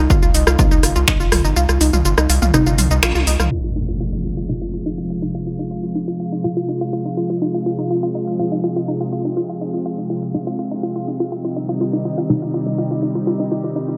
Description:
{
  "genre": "melodic techno",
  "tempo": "123 BPM",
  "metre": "4/4",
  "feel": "straight",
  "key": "F minor",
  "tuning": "A4 = 440 Hz",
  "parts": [
    { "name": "unison pluck", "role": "arpeggios", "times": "0.0-13.9 s", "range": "Eb4 to F4", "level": "-25 LUFS", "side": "equal", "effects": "cassette tape, sidechain pumping, delay" },
    { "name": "filtered dub chord stab", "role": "stabs", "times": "0.0-14.0 s", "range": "C3 to F4", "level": "-25 LUFS", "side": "equal", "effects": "phaser, subtle chorus, vintage 12-bit sampler grit, sidechain pumping, delay" },
    { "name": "gritty driven synth bass", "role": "bass", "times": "0.0-3.5 s", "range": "G1 to C2", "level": "-20 LUFS", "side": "equal", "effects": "sidechain pumping" },
    { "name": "deep house drum kit", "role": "drums", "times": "0.1-3.5 s", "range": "finger snaps, hi-hat, rim click, shaker, toms", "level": "-21 LUFS", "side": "equal", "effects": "overdrive, low-pass filter on hats, low-pass filter on perc, low-pass filter on snare, low-pass filter on toms" },
    { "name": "electronic kick drum", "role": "drums", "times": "0.1-1.2 s", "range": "none", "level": "-18 LUFS", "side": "equal", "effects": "none" },
    { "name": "lush unison pad", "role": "sustained chords", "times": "3.5-14.0 s", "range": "C3 to F4", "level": "-24 LUFS", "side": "equal", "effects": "chorus, sidechain pumping" },
    { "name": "impact", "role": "sound effects", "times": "3.5-5.5 s", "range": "none", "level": "-28 LUFS", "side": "equal", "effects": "none" }
  ],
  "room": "moderate lush hall reverb, RT60 1.9 s",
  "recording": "low-pass filter",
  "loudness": "-19 LUFS",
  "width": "mono",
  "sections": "0.0-3.5 A section; 3.5-14.0 B section",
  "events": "kick drops out 1.6-3.5; drum fill 3.0-3.5; band accent 3.0; impact 3.5-5.5; filter sweep 3.5-14.0",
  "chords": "0.0 Cm; 3.5 Fm; 11.3 Cm"
}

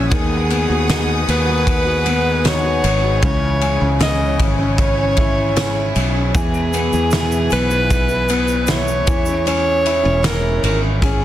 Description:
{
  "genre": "pop ballad",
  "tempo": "77 BPM",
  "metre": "4/4",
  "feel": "straight",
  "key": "unclear",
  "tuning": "A4 = 440 Hz",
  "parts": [
    { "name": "felt-muted upright piano", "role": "accompaniment", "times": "0.0-11.2 s", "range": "C#3 to E4", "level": "-24 LUFS", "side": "left 4 dB", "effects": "none" },
    { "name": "rich studio string section", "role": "sustained chords", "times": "0.0-9.5 s", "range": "E4 to D#6", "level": "-26 LUFS", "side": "left 1 dB", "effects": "none" },
    { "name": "picked steel-string acoustic guitar", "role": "arpeggios", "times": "0.0-11.2 s", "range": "E2 to F#4", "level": "-26 LUFS", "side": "right 2 dB", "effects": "none" },
    { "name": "fretless electric bass", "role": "bass", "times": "0.0-11.2 s", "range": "E1 to E2", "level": "-20 LUFS", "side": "equal", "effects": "analog chorus" },
    { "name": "clear alto saxophone", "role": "melody", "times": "0.1-11.2 s", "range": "G#4 to D#5", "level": "-20 LUFS", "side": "right 1 dB", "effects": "digital delay" },
    { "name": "loose indie drum kit", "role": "drums", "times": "0.1-11.2 s", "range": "kick drum, ride cymbal, snare drum", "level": "-20 LUFS", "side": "equal", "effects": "none" },
    { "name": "egg shaker", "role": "percussion", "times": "6.4-9.4 s", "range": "none", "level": "-33 LUFS", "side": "right 9 dB", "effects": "none" }
  ],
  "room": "light reverb, small room reverb",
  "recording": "dense, heavily limited modern master",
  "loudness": "-14 LUFS",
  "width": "side -12 dB against mid",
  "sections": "0.0-11.2 A section",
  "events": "none",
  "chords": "0.1 G#m7/D#; 3.2 C#m; 6.3 E; 9.1 C#m/E"
}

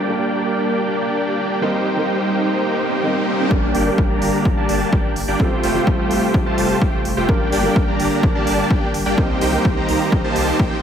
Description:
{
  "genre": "EDM, festival progressive house",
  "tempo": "127 BPM",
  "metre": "4/4",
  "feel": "straight",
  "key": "G minor",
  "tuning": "A4 = 438 Hz",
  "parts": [
    { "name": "dark concert grand piano", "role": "accompaniment", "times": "0.0-10.8 s", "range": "G3 to Bb4", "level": "-24 LUFS", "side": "right 1 dB", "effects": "sidechain pumping, ping-pong delay" },
    { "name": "lush unison pad", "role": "sustained chords", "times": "0.0-10.8 s", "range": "C3 to Bb4", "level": "-25 LUFS", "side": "left 1 dB", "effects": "chorus, vintage 12-bit sampler grit, sidechain pumping" },
    { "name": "supersaw chords", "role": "riff", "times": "0.0-10.8 s", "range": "A3 to Bb5", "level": "-20 LUFS", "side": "right 1 dB", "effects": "sidechain pumping, low-pass filter, ping-pong delay" },
    { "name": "riser", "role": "sound effects", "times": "1.1-3.5 s", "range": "none", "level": "-29 LUFS", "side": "left 1 dB", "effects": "none" },
    { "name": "saturated sub bass", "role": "bass", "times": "3.5-10.7 s", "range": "F1 to C2", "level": "-28 LUFS", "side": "equal", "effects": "sidechain pumping" },
    { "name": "electronic kick drum", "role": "drums", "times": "3.5-10.7 s", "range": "none", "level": "-19 LUFS", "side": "equal", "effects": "overdrive" },
    { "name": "electronic hi-hat", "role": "drums", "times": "3.7-10.5 s", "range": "none", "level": "-31 LUFS", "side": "right 2 dB", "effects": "overdrive" }
  ],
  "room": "light reverb",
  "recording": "none",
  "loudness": "-16 LUFS",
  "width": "side -8 dB against mid",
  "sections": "0.0-3.5 A section; 3.5-10.8 B section",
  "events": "riser 1.1-3.5; build-up 3.5-10.8",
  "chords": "0.0 Gm; 1.6 Cm7; 3.5 Gm; 5.4 Fadd9; 7.3 Gm; 9.2 Cm7"
}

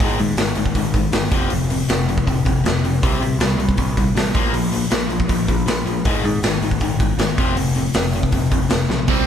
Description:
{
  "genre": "punk rock",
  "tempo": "159 BPM",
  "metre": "4/4",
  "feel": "straight",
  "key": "unclear",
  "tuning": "A4 = 440 Hz",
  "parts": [
    { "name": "distorted electric guitar", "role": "riff", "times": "0.0-9.3 s", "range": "F2 to C4", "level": "-21 LUFS", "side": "left 4 dB", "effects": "distortion" },
    { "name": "growling picked electric bass", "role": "bass", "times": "0.0-9.2 s", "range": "F1 to C3", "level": "-24 LUFS", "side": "right 1 dB", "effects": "overdrive" },
    { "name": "raw garage drum kit", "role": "drums", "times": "0.0-9.2 s", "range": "hi-hat, kick drum, snare drum", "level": "-20 LUFS", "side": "right 1 dB", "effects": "none" },
    { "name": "sludgy distorted guitar", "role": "riff", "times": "9.1-9.3 s", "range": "C3 to C4", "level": "-20 LUFS", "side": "right 14 dB", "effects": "overdrive" }
  ],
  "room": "moderate studio reverb, RT60 0.9 s",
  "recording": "band playing live in one room",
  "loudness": "-16 LUFS",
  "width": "side -9 dB against mid",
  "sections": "0.0-9.3 A section",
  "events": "drum fill 8.9",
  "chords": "0.0 Ab5; 1.3 F5; 3.0 C5; 4.3 Bb5; 6.1 Ab5; 7.4 F5"
}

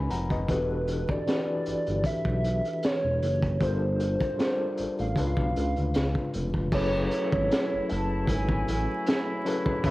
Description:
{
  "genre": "R&B, neo-soul",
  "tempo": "77 BPM",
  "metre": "4/4",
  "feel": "swing 53% on 16ths",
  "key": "F# minor from 6.7 s",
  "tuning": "A4 = 440 Hz",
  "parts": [
    { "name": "overdriven tine electric piano", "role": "accompaniment", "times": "0.0-9.9 s", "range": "C#3 to B5", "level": "-31 LUFS", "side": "left 2 dB", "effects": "medium tremolo, cassette tape" },
    { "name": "smooth synth bass", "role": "bass", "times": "0.0-9.9 s", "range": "E1 to D2", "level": "-29 LUFS", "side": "equal", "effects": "none" },
    { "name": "crunchy breakbeat drum kit", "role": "drums", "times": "0.1-9.9 s", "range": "crash cymbal, hi-hat, kick drum, snare drum", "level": "-30 LUFS", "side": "equal", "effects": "none" },
    { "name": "hollow square lead", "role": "melody", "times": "0.5-9.9 s", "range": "B4 to A5", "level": "-31 LUFS", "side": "right 1 dB", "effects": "chorus" },
    { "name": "warm woodwind section", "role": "sustained chords", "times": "6.7-9.9 s", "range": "F#3 to E4", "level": "-35 LUFS", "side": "right 1 dB", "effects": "cassette tape" }
  ],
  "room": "little or no reverb",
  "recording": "home recording on cassette, vinyl crackle",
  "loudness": "-25 LUFS",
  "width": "side -18 dB against mid",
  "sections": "0.0-6.7 A section; 6.7-9.9 B section",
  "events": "none",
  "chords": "0.5 Em11; 3.6 Gm11; 5.2 C#7b9; 6.7 F#m11"
}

